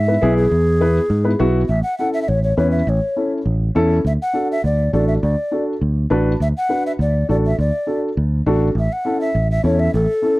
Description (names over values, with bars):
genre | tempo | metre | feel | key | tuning
latin, cumbia | 204 BPM | 4/4 | straight | A major | A4 = 440 Hz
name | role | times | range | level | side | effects
breathy round clay ocarina | melody | 0.0-10.4 s | G#4 to F#5 | -20 LUFS | equal | tape echo
fingered electric bass | bass | 0.0-10.1 s | A1 to G#2 | -17 LUFS | equal | none
dark upright piano | accompaniment | 0.1-10.4 s | B3 to A5 | -20 LUFS | left 1 dB | none
room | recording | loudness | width
little or no reverb | dry, close 1970s-style studio recording | -16 LUFS | side -19 dB against mid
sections
0.0-1.7 A section; 1.7-10.4 B section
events
upright piano fill 6.0-6.4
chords
0.0 E; 1.7 A; 4.0 D; 8.8 A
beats
0.23 | 0.52 0.81 1.11 1.40 | 1.70 1.99 2.28 2.58 | 2.87 3.16 3.46 3.75 | 4.05 4.34 4.63 4.93 | 5.22 5.52 5.81 6.11 | 6.40 6.70 6.99 7.29 | 7.58 7.87 8.17 8.46 | 8.76 9.05 9.35 9.64 | 9.94 10.23